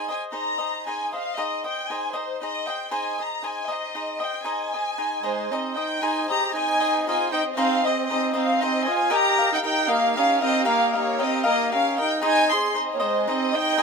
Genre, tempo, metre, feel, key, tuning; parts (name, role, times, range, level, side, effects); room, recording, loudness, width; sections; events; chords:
mexican folk, mariachi; 77 BPM (dotted quarters); 6/8; straight; Ab major; A4 = 440 Hz
dark chamber violin section; melody; 0.0-13.8 s; C5 to C6; -24 LUFS; equal
cavaquinho; accompaniment; 0.0-13.8 s; Eb4 to F5; -27 LUFS; left 2 dB
clear trumpet; second line; 5.2-13.8 s; Ab3 to Ab4; -26 LUFS; right 4 dB
warm studio violin section; sustained chords; 6.0-13.8 s; C4 to F5; -32 LUFS; right 1 dB
moderate studio reverb, RT60 0.6 s; minimal, uncompressed stereo recording; -21 LUFS; side -5 dB against mid
0.0-6.0 A section; 6.0-13.8 A section
0.0 Ab; 9.1 Ebadd9; 12.2 Ab